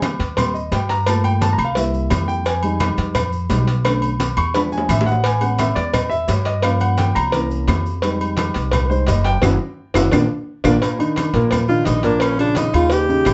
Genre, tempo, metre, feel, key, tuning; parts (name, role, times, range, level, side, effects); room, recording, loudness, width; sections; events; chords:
Afro-Cuban jazz; 172 BPM; 4/4; straight; A4 = 439 Hz
dark concert grand piano; accompaniment; 0.0-13.3 s; Bb2 to Db6; -23 LUFS; equal
claves; percussion; 0.0-13.3 s; -32 LUFS; equal
congas; percussion; 0.0-13.3 s; -29 LUFS; equal
cowbell; percussion; 0.0-13.3 s; -28 LUFS; equal
maracas; percussion; 0.0-13.3 s; -41 LUFS; equal
timbales and agogo bells; percussion; 0.0-13.3 s; -28 LUFS; equal
upright bass; bass; 0.2-13.3 s; Gb1 to G2; -23 LUFS; equal
clear alto saxophone; melody; 11.7-13.3 s; Db4 to G4; -20 LUFS; equal
moderate club reverb, RT60 0.6 s; nothing above 7.9 kHz; -18 LUFS; mono
0.0-10.8 A section; 10.8-13.3 A section
grand piano solo 0.0-10.8; drum fill 4.5-5.2, 10.1-10.8; band accent 9.4-10.8; alto saxophone solo 10.8-13.3
0.0 Abmaj9 (rootless); 1.1 Gm7; 1.8 C7; 2.5 Fm9; 3.9 Bm7; 4.5 E7b9; 5.2 Amaj9; 6.6 Gm7b5; 7.3 C7b9; 8.0 Fm9; 9.4 Gb5; 10.1 Bb; 10.8 Eb5; 12.2 Bbm